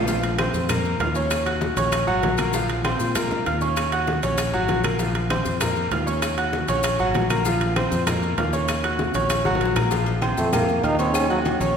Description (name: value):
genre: latin, salsa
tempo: 195 BPM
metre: 4/4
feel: straight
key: Bb minor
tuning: A4 = 436 Hz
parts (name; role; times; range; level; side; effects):
- bright grand piano; accompaniment; 0.0-11.8 s; F3 to Gb6; -23 LUFS; equal; none
- fingered electric bass; bass; 0.0-11.8 s; Ab1 to Bb2; -26 LUFS; left 1 dB; none
- bongos and cowbell; percussion; 0.1-11.6 s; none; -32 LUFS; left 4 dB; none
- congas; percussion; 0.1-11.8 s; none; -30 LUFS; left 1 dB; none
- maracas; percussion; 0.1-11.8 s; none; -36 LUFS; left 4 dB; none
- timbales and agogo bells; percussion; 0.2-11.8 s; none; -29 LUFS; right 4 dB; none
- claves; percussion; 0.4-11.3 s; none; -36 LUFS; left 4 dB; none
- growling trombone; melody; 10.4-11.4 s; Gb3 to Eb4; -23 LUFS; right 1 dB; none
room: wet concert hall reverb, RT60 1.8 s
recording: recorded in a church or concert hall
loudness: -20 LUFS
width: side -7 dB against mid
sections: 0.1-9.9 A section; 9.9-11.8 B section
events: drum fill 9.5-9.9; trombone solo 9.9-11.8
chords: 0.1 Bbmadd9; 1.3 Ebm7; 2.5 Bbmadd9; 3.8 Ebm7; 5.0 Bbmadd9; 6.2 Ebm7; 7.5 Bbmadd9; 8.7 Ebm7; 9.9 Bbmadd9; 11.1 Ebm7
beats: | 0.08 0.39 0.69 1.00 | 1.31 1.61 1.92 2.23 | 2.54 2.84 3.15 3.46 | 3.77 4.07 4.38 4.69 | 5.00 5.30 5.61 5.92 | 6.22 6.53 6.84 7.15 | 7.46 7.76 8.07 8.38 | 8.69 8.99 9.30 9.61 | 9.92 10.22 10.53 10.84 | 11.15 11.45 11.76